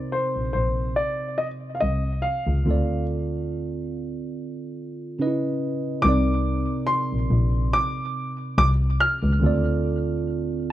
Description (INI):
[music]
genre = R&B, neo-soul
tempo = 71 BPM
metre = 4/4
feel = swing 54% on 16ths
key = C dorian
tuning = A4 = 439 Hz
[part]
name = warm baby grand piano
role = melody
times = 0.0-10.7 s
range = C5 to F6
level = -26 LUFS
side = equal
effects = low-pass filter, tape echo
[part]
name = tine electric piano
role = accompaniment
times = 0.0-10.7 s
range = C3 to Eb5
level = -27 LUFS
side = right 2 dB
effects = phaser, low-pass filter
[part]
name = muted double bass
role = bass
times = 0.4-10.7 s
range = Bb1 to D2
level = -23 LUFS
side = left 1 dB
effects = none
[sound]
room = small room ambience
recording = dry, close 1970s-style studio recording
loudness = -21 LUFS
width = side -13 dB against mid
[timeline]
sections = 0.0-6.0 A section; 6.0-10.7 B section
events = tine electric piano fill 10.3-10.7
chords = 0.0 Cm9; 2.7 Dm7; 5.2 Dbm9; 6.0 Cm9; 9.4 Dm7